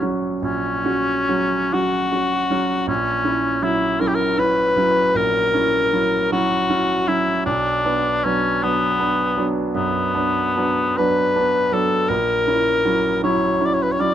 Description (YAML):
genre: classical, romantic duo for cor anglais and grand piano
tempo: 45-55 BPM (dotted quarters)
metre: 12/8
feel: rubato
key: unclear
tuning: A4 = 440 Hz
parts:
  - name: clear cor anglais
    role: melody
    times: 0.0-14.1 s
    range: B3 to D5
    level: -19 LUFS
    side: left 2 dB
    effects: none
  - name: clear concert grand piano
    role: accompaniment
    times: 0.0-14.1 s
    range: A#1 to F#4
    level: -21 LUFS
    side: right 3 dB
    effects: none
room: light reverb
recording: close, detailed microphones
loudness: -17 LUFS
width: side -10 dB against mid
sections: 0.0-14.1 A section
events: none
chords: 0.0 F#/A#; 2.9 F#7/A#; 7.5 Bm; 12.1 F#7/A#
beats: 0.43 1.72 | 2.88 4.00 5.15 6.32 | 7.45 8.61 9.74 10.97 | 12.09 13.23